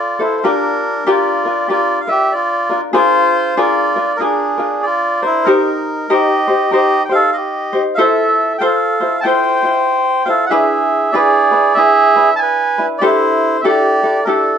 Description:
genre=Hawaiian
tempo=95 BPM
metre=4/4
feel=swing 62% on 8ths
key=unclear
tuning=A4 = 437 Hz
part: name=melodica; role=melody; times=0.0-14.6 s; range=D4 to A5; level=-13 LUFS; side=right 1 dB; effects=none
part: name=ukulele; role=accompaniment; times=0.0-14.6 s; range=D4 to C5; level=-17 LUFS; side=left 2 dB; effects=none
room=light reverb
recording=band playing live in one room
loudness=-12 LUFS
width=side -8 dB against mid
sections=0.0-14.6 A section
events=none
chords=0.4 Gm7; 3.0 Bb7; 5.5 Eb6; 8.0 Fmaj7; 10.5 E7; 13.0 A7sus4

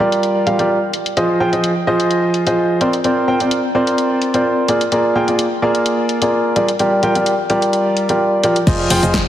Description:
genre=piano house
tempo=128 BPM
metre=4/4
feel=swing 54% on 16ths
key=F dorian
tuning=A4 = 440 Hz
part: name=clear grand piano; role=riff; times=0.0-9.2 s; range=F3 to G5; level=-14 LUFS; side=equal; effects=sidechain pumping, tape echo
part: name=house drum kit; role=drums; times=0.1-9.2 s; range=crash cymbal, hi-hat, ride cymbal, shaker, snare drum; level=-23 LUFS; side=left 2 dB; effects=low-pass filter on hats, low-pass filter on cymbals, low-pass filter on perc, low-pass filter on snare
part: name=solid FM bass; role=bass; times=8.7-9.3 s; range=F1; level=-18 LUFS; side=equal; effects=sidechain pumping
part: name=electronic kick drum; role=drums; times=8.7-9.2 s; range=none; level=-17 LUFS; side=equal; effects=none
room=wet lush hall reverb, RT60 1.9 s, digital ambience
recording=heavily compressed radio sound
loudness=-14 LUFS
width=side -11 dB against mid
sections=0.0-8.7 A section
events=none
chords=0.0 Gm7; 1.2 Fm7; 2.8 C9sus4; 4.7 Bb7; 6.8 Gm7; 8.7 Fm7

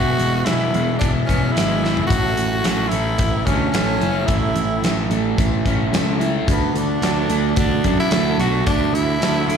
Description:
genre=classic rock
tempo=110 BPM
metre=4/4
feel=straight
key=unclear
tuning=A4 = 441 Hz
part: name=raspy tenor saxophone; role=melody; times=0.0-9.6 s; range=B3 to F#4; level=-23 LUFS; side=equal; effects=slapback echo, plate reverb
part: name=picked twelve-string acoustic guitar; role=accompaniment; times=0.0-9.6 s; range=E2 to F#4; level=-32 LUFS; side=right 2 dB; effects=none
part: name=raw garage guitar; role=riff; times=0.0-9.6 s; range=A2 to F#4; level=-22 LUFS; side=right 1 dB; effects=overdrive, slapback echo
part: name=picked electric bass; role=bass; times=0.0-9.6 s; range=E1 to F#2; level=-21 LUFS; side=right 1 dB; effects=none
part: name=big rock drum kit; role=drums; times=0.2-9.6 s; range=hi-hat, kick drum, snare drum, toms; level=-22 LUFS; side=equal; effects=none
room=light reverb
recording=live gig heard through the venue's PA, club reverb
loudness=-16 LUFS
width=side -7 dB against mid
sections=0.0-9.6 A section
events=drum fill 1.8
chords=0.0 E; 2.1 A; 6.5 D

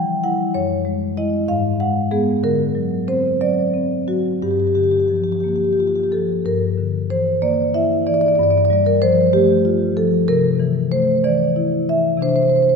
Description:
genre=classical, contemporary piece for solo marimba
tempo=62 BPM (dotted quarters)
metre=6/8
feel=rubato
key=G dorian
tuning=A4 = 440 Hz
part: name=marimba with medium mallets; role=solo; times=0.0-12.8 s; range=F#2 to G5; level=-16 LUFS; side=left 1 dB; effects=none
room=wet scoring stage reverb, RT60 1.9 s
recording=minimal, uncompressed stereo recording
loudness=-16 LUFS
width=side -5 dB against mid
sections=0.0-6.5 A section; 6.5-12.8 A section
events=none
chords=0.0 Em; 0.5 F#sus2; 1.5 Abm; 2.4 Daug7; 4.4 Gm7; 6.5 Gm6; 8.4 Fadd9/G; 10.3 C13; 12.2 Cadd9

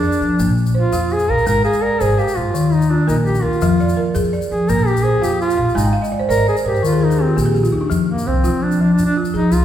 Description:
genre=west african traditional, West African string and xylophone music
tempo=112 BPM (dotted quarters)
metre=12/8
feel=straight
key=F dorian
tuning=A4 = 440 Hz
part: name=clear duduk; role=melody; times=0.0-9.6 s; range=Bb3 to Bb4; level=-19 LUFS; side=right 1 dB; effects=none
part: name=balafon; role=arpeggios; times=0.0-9.6 s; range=Eb3 to Ab5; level=-18 LUFS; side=left 1 dB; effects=none
part: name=tube shaker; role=percussion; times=0.0-9.6 s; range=none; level=-34 LUFS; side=left 4 dB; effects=none
part: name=upright bass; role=bass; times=0.2-9.6 s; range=Ab1 to F3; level=-19 LUFS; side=equal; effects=none
room=wet recital hall reverb, RT60 1.6 s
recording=heard from further back in the room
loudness=-14 LUFS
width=side -10 dB against mid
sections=0.0-7.9 A section; 7.9-9.6 B section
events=duduk solo 0.0-7.9; balafon fill 5.8-7.9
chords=0.4 Bb; 1.5 Ab; 2.5 Eb5; 3.6 Fm; 4.7 Bb; 5.8 Ab; 6.8 Eb5; 7.9 Fm

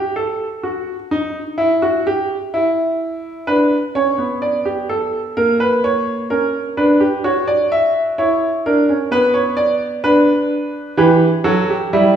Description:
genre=classical, baroque-style 3-part fugue for grand piano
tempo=64 BPM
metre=4/4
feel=straight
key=unclear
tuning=A4 = 441 Hz
part: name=clear baby grand piano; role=solo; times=0.0-12.2 s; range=E3 to E5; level=-14 LUFS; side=right 1 dB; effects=none
room=wet recital hall reverb, RT60 1.4 s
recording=heard from further back in the room, small room ambience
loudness=-14 LUFS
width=side -9 dB against mid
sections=0.0-12.2 A section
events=none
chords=0.0 N.C.; 3.5 Bm; 5.4 A#m6; 7.2 F#7; 9.1 Bm; 11.0 Em

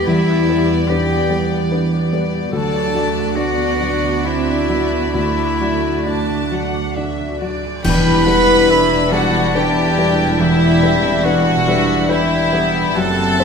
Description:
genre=cinematic, emotional film score for orchestra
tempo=65-73 BPM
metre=3/4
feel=rubato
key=E minor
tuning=A4 = 440 Hz
part: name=warm chamber violin section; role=melody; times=0.0-13.4 s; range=D5 to B5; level=-25 LUFS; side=equal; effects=none
part: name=bright clarinet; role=second line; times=0.0-13.4 s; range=B3 to A4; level=-24 LUFS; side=left 2 dB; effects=none
part: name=warm symphonic violin section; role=second line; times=0.0-13.4 s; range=E4 to A5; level=-21 LUFS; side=left 2 dB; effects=none
part: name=dark chamber viola section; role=accompaniment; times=0.0-13.4 s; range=C3 to G4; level=-25 LUFS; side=right 3 dB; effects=none
part: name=felt-muted upright piano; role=accompaniment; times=0.0-13.4 s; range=D2 to D5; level=-22 LUFS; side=left 2 dB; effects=none
part: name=concert harp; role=arpeggios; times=0.0-13.4 s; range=F#2 to D6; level=-23 LUFS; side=left 5 dB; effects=none
part: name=dark symphonic double bass section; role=bass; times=0.0-13.4 s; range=E1 to E2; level=-24 LUFS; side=right 5 dB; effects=none
part: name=warm studio cello section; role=bass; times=0.0-13.4 s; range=E2 to C4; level=-23 LUFS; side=right 4 dB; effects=none
part: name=cymbal swell, clash cymbals and concert bass drum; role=percussion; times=5.2-9.5 s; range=none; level=-24 LUFS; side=equal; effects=none
part: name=silver concert flute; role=second line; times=7.8-13.4 s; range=E5 to B5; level=-24 LUFS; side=right 1 dB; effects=none
part: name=warm oboe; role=second line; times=7.8-13.4 s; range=E5 to A5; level=-25 LUFS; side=equal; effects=none
part: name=clear French horn section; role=sustained chords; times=7.8-13.4 s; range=C3 to D4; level=-25 LUFS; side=left 4 dB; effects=none
room=wet scoring stage reverb, RT60 1.6 s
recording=none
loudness=-14 LUFS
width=side -6 dB against mid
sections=0.0-7.8 A section; 7.8-13.4 B section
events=band accent 7.8-8.7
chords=0.0 Em7; 2.5 D; 7.8 Em7

